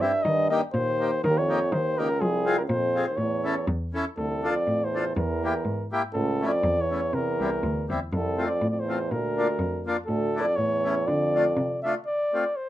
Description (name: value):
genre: alpine folk, alpine dance band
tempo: 122 BPM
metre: 2/4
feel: swing 54% on 8ths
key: D minor from 4.2 s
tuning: A4 = 443 Hz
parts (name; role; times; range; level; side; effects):
- mellow flugelhorn; melody; 0.0-12.7 s; Ab4 to E5; -26 LUFS; left 1 dB; none
- warm euphonium; second line; 0.0-11.8 s; C2 to G2; -29 LUFS; right 4 dB; none
- accordion; accompaniment; 0.0-12.4 s; G3 to A4; -28 LUFS; left 2 dB; none
- warm cello; bass; 0.0-11.9 s; C2 to F3; -30 LUFS; equal; none
room: wet small room ambience, RT60 0.5 s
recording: rough home demo mix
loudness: -23 LUFS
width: side -13 dB against mid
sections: 0.0-4.2 A section; 4.2-12.1 B section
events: none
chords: 0.2 Eb; 2.2 Fm; 3.2 A; 4.2 Dm; 5.2 Edim; 6.1 A; 7.1 C7; 8.1 F; 9.1 Bb; 10.1 Asus4; 10.6 A; 11.1 Dm; 12.1 F